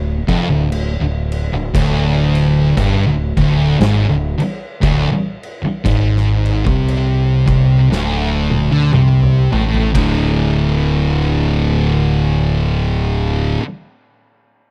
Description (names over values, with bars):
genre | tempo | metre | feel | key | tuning
stoner and doom metal | 58 BPM | 4/4 | swing 58% on 8ths | unclear | A4 = 439 Hz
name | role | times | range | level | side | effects
thick fuzz guitar | riff | 0.0-13.6 s | D2 to D3 | -19 LUFS | equal | distortion
thick fuzz guitar | riff | 0.0-13.6 s | D2 to D3 | -20 LUFS | equal | distortion
growling fingered electric bass | bass | 0.0-13.6 s | D1 to D2 | -22 LUFS | equal | overdrive
oversized low-tuned drum kit | drums | 0.3-10.2 s | crash cymbal, kick drum, ride cymbal, snare drum, toms | -24 LUFS | equal | none
room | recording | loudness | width
small room ambience | dry, close 1970s-style studio recording | -15 LUFS | mono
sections
0.0-9.9 A section; 9.9-14.0 B section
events
drum fill 7.9-9.9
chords
0.0 D5